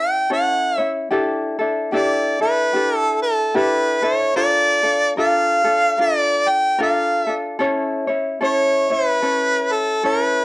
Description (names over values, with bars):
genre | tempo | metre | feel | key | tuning
Hawaiian | 74 BPM | 4/4 | swing 59% on 8ths | unclear | A4 = 435 Hz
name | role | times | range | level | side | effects
bright harmonica | melody | 0.0-10.4 s | A4 to G5 | -17 LUFS | equal | cassette tape
ukulele | accompaniment | 0.0-10.4 s | C#4 to C#5 | -21 LUFS | left 1 dB | none
room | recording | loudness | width
moderate small room reverb, RT60 0.6 s | home recording on cassette | -16 LUFS | side -20 dB against mid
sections
0.0-10.4 A section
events
none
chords
0.0 A; 1.1 A7sus4; 4.3 Bbmaj7; 7.6 A